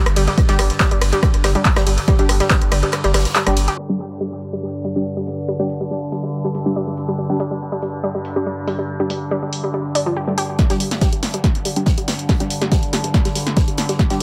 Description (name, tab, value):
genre	driving peak-time techno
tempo	141 BPM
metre	4/4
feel	straight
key	unclear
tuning	A4 = 436 Hz
part	overtone-sweeping drone	drone	0.1-14.2 s	G2 to D3	-28 LUFS	equal	chorus, built-in reverb, sidechain pumping
part	saturated sub bass	bass	0.1-3.7 s	G1	-21 LUFS	equal	overdrive, sidechain pumping, low-pass filter
part	compact cocktail drum kit	drums	0.1-3.8, 10.6-14.2 s	hi-hat, snare drum	-35 LUFS	equal	none
part	punchy analog drum machine	drums	0.1-14.2 s	handclaps, hi-hat, ride cymbal, rim click, snare drum	-24 LUFS	equal	dub echo
part	analog pluck	riff	0.2-14.2 s	F3 to G4	-26 LUFS	equal	chorus, tube saturation, sidechain pumping, dub echo
part	electronic kick drum	drums	0.4-2.6, 10.6-14.1 s	none	-19 LUFS	equal	none
part	filtered dub chord stab	stabs	0.5-14.2 s	G3 to G4	-28 LUFS	equal	subtle chorus, sidechain pumping, dub echo
room	light reverb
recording	echo-heavy mix, low-pass filter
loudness	-19 LUFS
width	mono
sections	0.0-3.8 A section; 3.8-10.6 B section; 10.6-14.2 C section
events	drop 0.0-3.8; kick drops out 2.9-3.8; filter sweep on synth arpeggio sound 3.8-10.6, 10.6-14.2; filter sweep 3.8-10.6; build-up 10.6-14.2; drum fill 10.6-14.2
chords	0.0 G5